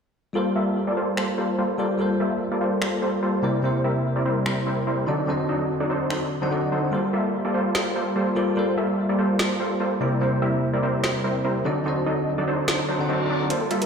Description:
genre	future bass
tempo	146 BPM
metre	4/4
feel	swing 54% on 16ths, half-time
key	G dorian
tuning	A4 = 441 Hz
part	bell-like tine electric piano	accompaniment	0.3-13.5 s	C3 to F#5	-26 LUFS	left 1 dB	phaser, dub echo
part	supersaw stab	riff	0.4-13.9 s	F#3 to E5	-24 LUFS	right 1 dB	low-pass filter, dub echo
part	trap drum kit	drums	1.2-13.9 s	finger snaps, hi-hat, snare drum	-28 LUFS	equal	small room ambience
part	reverse cymbal	sound effects	12.9-13.5 s	none	-32 LUFS	left 4 dB	none
part	soft round pluck	arpeggios	13.5-13.9 s	F4 to Bb4	-30 LUFS	left 2 dB	chorus, dub echo
room	moderate lush hall reverb, RT60 2.2 s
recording	played on a big sound system in a bare room, stone room reverb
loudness	-21 LUFS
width	side -6 dB against mid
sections	0.4-13.9 A section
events	reverse cymbal 12.9-13.5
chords	0.4 Gm11; 3.4 C7; 5.1 D7b9; 6.9 Gm11; 10.0 C7; 11.7 D7b9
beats	| 0.35 0.76 1.17 1.58 | 2.00 2.41 2.82 3.23 | 3.64 4.05 4.46 4.87 | 5.28 5.69 6.11 6.52 | 6.93 7.34 7.75 8.16 | 8.57 8.98 9.39 9.80 | 10.21 10.62 11.04 11.45 | 11.86 12.27 12.68 13.09 | 13.50

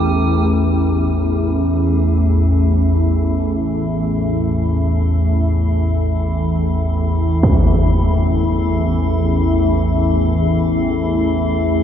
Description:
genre	dark ambient drone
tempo	free time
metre	none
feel	none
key	unclear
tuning	A4 = 440 Hz
part	sweeping resonant pad	sustained chords	0.0-0.5 s	E3 to A4	-28 LUFS	equal	none
part	organ-like drone	drone	0.0-11.8 s	A1 to E2	-15 LUFS	equal	ensemble chorus, built-in reverb
part	metallic inharmonic drone	texture	0.0-11.8 s	E4 to G4	-28 LUFS	left 3 dB	chorus, built-in reverb
part	impact	percussion	7.4-7.7 s	none	-18 LUFS	equal	low-pass filter on sfx
room	wet huge ambient reverb, RT60 7.5 s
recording	dreamy mix soaked in reverb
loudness	-14 LUFS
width	side -9 dB against mid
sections	0.5-11.8 A section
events	fade-in on synth drone 0.5-11.8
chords	0.0 A5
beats	free time

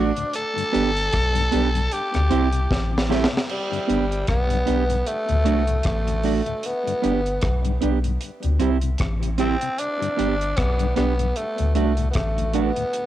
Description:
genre	roots reggae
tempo	76 BPM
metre	4/4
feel	swing 57% on 16ths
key	G major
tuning	A4 = 441 Hz
part	growling tenor saxophone	melody	0.0-13.1 s	G3 to A4	-25 LUFS	equal	cassette tape, tape echo
part	mellow electric guitar	accompaniment	0.0-12.7 s	A3 to G4	-26 LUFS	right 7 dB	cassette tape, tape echo
part	mellow tonewheel organ	accompaniment	0.0-12.8 s	D2 to E4	-32 LUFS	left 8 dB	chorus vibrato, slow rotary speaker, cassette tape, tape echo
part	soft dub sub bass	bass	0.0-12.7 s	G1 to D2	-23 LUFS	left 1 dB	none
part	deep reggae drum kit	drums	0.2-13.1 s	crash cymbal, hi-hat, kick drum, rim click, snare drum	-27 LUFS	equal	cassette tape
room	light reverb, small room ambience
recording	home recording on cassette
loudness	-20 LUFS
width	side -13 dB against mid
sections	0.0-3.5 A section; 3.5-13.1 B section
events	drum fill 2.7-3.5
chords	0.3 G; 1.9 C; 3.5 G; 5.1 D; 6.6 G; 8.2 C; 9.8 G; 11.4 D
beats	| 0.34 1.13 1.91 2.70 | 3.49 4.28 5.06 5.85 | 6.63 7.42 8.21 9.00 | 9.78 10.57 11.36 12.14 | 12.93

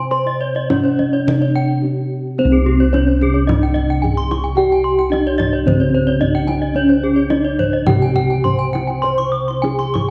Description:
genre	Balinese gamelan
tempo	108 BPM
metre	4/4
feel	uneven beats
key	C pelog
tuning	A4 = 441 Hz
part	gamelan-type bronze metallophone	melody	0.0-10.1 s	C4 to C5	-21 LUFS	equal	none
part	gamelan-type bronze metallophone	arpeggios	0.0-10.1 s	Ab4-40c to Db6	-28 LUFS	equal	none
part	gamelan-type bossed gongs	bass	0.0-10.1 s	C2 to C5	-20 LUFS	equal	none
part	gamelan-type bronze metallophone	arpeggios	0.1-9.8 s	G4-45c to D6+50c	-26 LUFS	equal	none
part	kendang	percussion	0.3-10.1 s	none	-25 LUFS	equal	none
room	moderate scoring stage reverb, RT60 1.9 s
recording	dark, warm production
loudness	-16 LUFS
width	mono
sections	0.0-2.4 A section; 2.4-10.1 B section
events	break 1.6-2.4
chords	none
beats	| 0.11 0.70 1.27 1.83 | 2.39 2.93 3.48 4.03 | 4.57 5.12 5.67 6.21 | 6.76 7.31 7.88 8.45 | 9.04 9.63

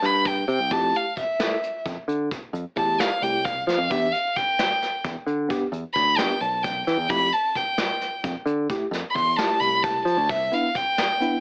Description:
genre	progressive instrumental, band music in an uneven meter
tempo	263 BPM (eighths)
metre	7/8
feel	straight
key	F lydian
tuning	A4 = 440 Hz
part	dark violin	melody	0.0-11.4 s	E5 to C6	-22 LUFS	equal	none
part	picked electric bass	bass	0.0-10.5 s	B1 to F3	-26 LUFS	equal	none
part	vintage brush drum kit	drums	0.0-11.3 s	hi-hat, kick drum, snare drum	-29 LUFS	equal	none
part	tine electric piano	accompaniment	0.7-11.4 s	A3 to A4	-27 LUFS	equal	medium stereo tremolo
room	moderate studio reverb, RT60 0.5 s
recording	AM radio sound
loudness	-21 LUFS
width	side -36 dB against mid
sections	0.0-11.4 A section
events	violin solo 0.0-11.4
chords	0.0 C5; 0.7 Fmaj7; 3.9 Em7; 7.1 Fmaj7; 10.3 Cmaj9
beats	0.02 0.25 0.48 | 0.71 0.94 1.17 1.40 1.62 1.85 2.08 | 2.31 2.54 2.77 3.00 3.22 3.45 3.68 | 3.91 4.14 4.36 4.59 4.82 5.05 5.28 | 5.50 5.73 5.96 6.19 6.42 6.64 6.87 | 7.10 7.33 7.56 7.79 8.01 8.24 8.47 | 8.70 8.93 9.15 9.38 9.61 9.84 10.07 | 10.29 10.52 10.75 10.98 11.21

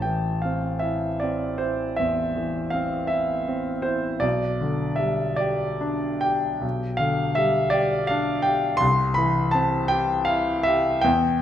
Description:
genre	classical, romantic nocturne for solo piano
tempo	46-57 BPM (dotted quarters)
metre	12/8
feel	rubato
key	A minor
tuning	A4 = 440 Hz
part	clear grand piano	solo	0.0-11.4 s	A1 to C6	-21 LUFS	equal	none
room	moderate recital hall reverb, RT60 1.5 s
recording	none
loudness	-21 LUFS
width	side -10 dB against mid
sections	0.0-11.4 A section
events	none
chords	0.0 Am; 4.2 G/B; 8.8 C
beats	0.82 1.99 3.11 | 4.24 5.39 6.63 7.75 | 8.82 9.92 11.05

